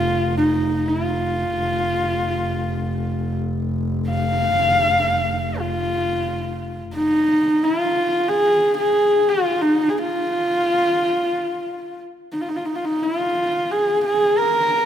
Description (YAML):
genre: mongolian traditional, Mongolian folk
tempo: 89 BPM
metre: 4/4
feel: straight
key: F yu mode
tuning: A4 = 440 Hz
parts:
  - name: warm horsehead fiddle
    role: melody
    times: 0.0-14.9 s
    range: Eb4 to F5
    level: -18 LUFS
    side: equal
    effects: none
  - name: warm double bass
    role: drone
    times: 0.0-7.0 s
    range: F1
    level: -24 LUFS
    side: equal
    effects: none
room: moderate concert hall reverb, RT60 1.9 s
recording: none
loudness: -18 LUFS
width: side -10 dB against mid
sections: 0.0-7.0 A section; 7.0-14.9 B section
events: none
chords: none